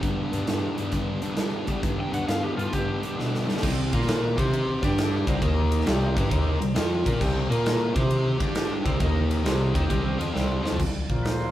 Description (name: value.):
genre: blues rock power trio and southern rock.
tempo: 134 BPM.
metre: 4/4.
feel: swing 67% on 8ths.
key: C minor.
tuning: A4 = 441 Hz.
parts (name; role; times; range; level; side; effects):
crunchy overdriven guitar; riff; 0.0-10.8 s; G2 to C5; -26 LUFS; equal; none.
mellow bass clarinet; bass; 0.0-11.5 s; C2 to G3; -28 LUFS; equal; none.
big rock drum kit; drums; 0.0-11.4 s; crash cymbal, hi-hat, kick drum, ride cymbal, snare drum, toms; -27 LUFS; equal; none.
overdriven slide guitar; melody; 2.0-3.2 s; F4 to G5; -31 LUFS; left 1 dB; none.
overdriven tonewheel organ; sustained chords; 3.6-11.5 s; F3 to F5; -36 LUFS; right 1 dB; slow rotary speaker.
room: moderate large studio reverb, RT60 0.8 s.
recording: band playing live in one room.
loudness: -22 LUFS.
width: side -13 dB against mid.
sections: 0.0-3.6 A section; 3.6-10.8 B section.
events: drum fill 3.2-3.6, 10.3-10.8.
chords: 0.0 G; 3.6 Cm; 3.8 Bb5; 4.3 Cm; 4.7 G5; 5.2 Cm; 5.4 Eb5; 5.9 Cm; 7.4 Bb5; 7.9 Cm; 8.3 G5; 8.8 Cm; 9.0 Eb5; 9.4 Cm; 10.8 N.C.; 11.0 Bb5.